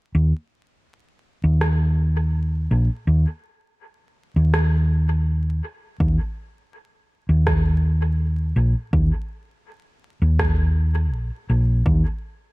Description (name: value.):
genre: ambient dub.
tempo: 82 BPM.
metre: 4/4.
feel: straight.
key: unclear.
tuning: A4 = 443 Hz.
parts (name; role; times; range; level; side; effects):
hollow-body short-scale fingered electric bass; bass; 0.1-12.0 s; Bb1 to Eb2; -18 LUFS; equal; none.
electronic rim click; drums; 1.6-10.5 s; none; -30 LUFS; right 1 dB; dub echo.
electronic kick drum; drums; 6.0-12.0 s; none; -24 LUFS; equal; overdrive.
room: little or no reverb.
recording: dark, warm production, vinyl crackle.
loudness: -18 LUFS.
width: side -22 dB against mid.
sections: 0.2-11.9 A section.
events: none.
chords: none.